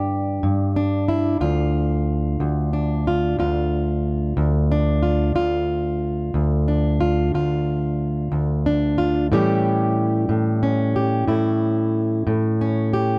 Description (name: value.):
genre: blues.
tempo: 61 BPM (dotted quarters).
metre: 12/8.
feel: straight.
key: D minor.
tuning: A4 = 440 Hz.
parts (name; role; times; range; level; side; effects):
fingerpicked plugged-in steel-string acoustic guitar; solo; 0.0-13.2 s; D2 to G4; -21 LUFS; equal; none.
room: small room ambience.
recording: dry, close 1970s-style studio recording.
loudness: -21 LUFS.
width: mono.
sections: 0.0-13.2 A section.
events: none.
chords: 0.0 G5; 1.4 Dm; 9.3 A7.